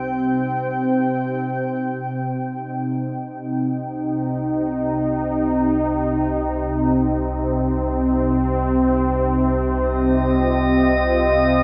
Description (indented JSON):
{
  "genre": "ambient",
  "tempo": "free time",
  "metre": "none",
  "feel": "none",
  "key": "C minor",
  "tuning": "A4 = 435 Hz",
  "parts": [
    { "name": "warm analog pad", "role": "sustained chords", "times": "0.0-11.6 s", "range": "C3 to G5", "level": "-21 LUFS", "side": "equal", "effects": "chorus" },
    { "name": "overdriven tine electric piano", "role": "arpeggios", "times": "0.0-2.5 s", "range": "none", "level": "barely audible", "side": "none", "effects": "none" },
    { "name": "round analog bass", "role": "bass", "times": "0.0-11.6 s", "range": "C2", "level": "-30 LUFS", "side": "equal", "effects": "none" },
    { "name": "drifting glass-harmonics texture", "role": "texture", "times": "0.0-1.9, 10.2-11.6 s", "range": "Eb5 to G5", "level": "-25 LUFS", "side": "equal", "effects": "chorus, built-in reverb" }
  ],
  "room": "wet huge ambient reverb, RT60 9.2 s",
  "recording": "none",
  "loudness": "-21 LUFS",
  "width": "mono",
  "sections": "0.0-1.9 A section; 1.9-11.6 B section",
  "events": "none",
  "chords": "0.0 Cm",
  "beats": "free time"
}